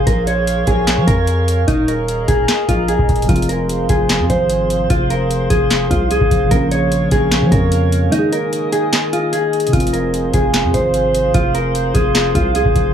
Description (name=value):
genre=hip hop, trap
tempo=149 BPM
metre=4/4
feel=half-time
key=F minor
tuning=A4 = 440 Hz
part: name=mellow electric guitar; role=melody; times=0.0-12.9 s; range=Eb4 to Db5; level=-18 LUFS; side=equal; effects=low-pass filter, dub echo
part: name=warbly tape-like pad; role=sustained chords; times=0.0-12.9 s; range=Ab4 to Eb6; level=-23 LUFS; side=right 3 dB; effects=chorus, built-in reverb
part: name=long sustained 808-style bass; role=bass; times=0.0-12.9 s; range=Eb1 to F3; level=-18 LUFS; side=equal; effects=none
part: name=booming analog drum machine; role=drums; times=0.1-12.9 s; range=handclaps, hi-hat, kick drum, snare drum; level=-18 LUFS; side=equal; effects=none
part: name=muted felt-like synth keys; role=accompaniment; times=3.2-12.9 s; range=C3 to Ab4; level=-21 LUFS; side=right 1 dB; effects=chorus, low-pass filter, dub echo
room=digital ambience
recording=echo-heavy mix, small room ambience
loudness=-13 LUFS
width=side -9 dB against mid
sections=0.0-9.7 A section; 9.7-12.9 A section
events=break 8.1-9.7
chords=0.1 Bbm; 1.7 Ebsus4; 3.3 Fm; 6.5 Bbm; 8.1 Ebsus4; 9.7 Fm